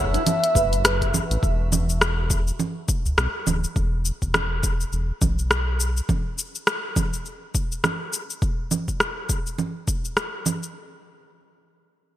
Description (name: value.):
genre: organic downtempo.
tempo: 103 BPM.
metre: 4/4.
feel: swing 58% on 16ths.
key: unclear.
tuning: A4 = 440 Hz.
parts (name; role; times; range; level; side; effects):
breathy flute-like synth lead; melody; 0.0-1.1 s; E5; -25 LUFS; equal; wide subtle chorus, digital delay.
granular cloud pad; sustained chords; 0.0-1.4 s; F#4 to C#6; -40 LUFS; left 2 dB; built-in reverb, wide subtle chorus, sidechain pumping.
nylon-string guitar; arpeggios; 0.0-1.0 s; E4 to C#5; -31 LUFS; right 1 dB; ensemble chorus, digital delay.
round analog bass; bass; 0.0-6.0 s; D1 to B1; -24 LUFS; equal; sidechain pumping.
deep house drum kit; drums; 0.1-10.7 s; congas, hi-hat, rim click, shaker; -23 LUFS; right 1 dB; studio reverb, gated reverb.
electronic kick drum; drums; 0.6-10.0 s; none; -25 LUFS; equal; studio reverb.
udu; percussion; 3.1-3.2 s; none; -27 LUFS; equal; none.
room: light reverb, digital ambience.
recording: bright 1980s-style digital production.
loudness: -21 LUFS.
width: side -13 dB against mid.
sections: 0.0-1.4 A section; 1.4-10.7 B section.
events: filter sweep on analog synth bass 1.4-6.1.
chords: 0.0 F#m7; 1.4 E5.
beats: 0.26 0.84 | 1.43 2.01 2.59 3.17 | 3.76 4.34 4.92 5.50 | 6.09 6.67 7.25 7.83 | 8.42 9.00 9.58 10.16.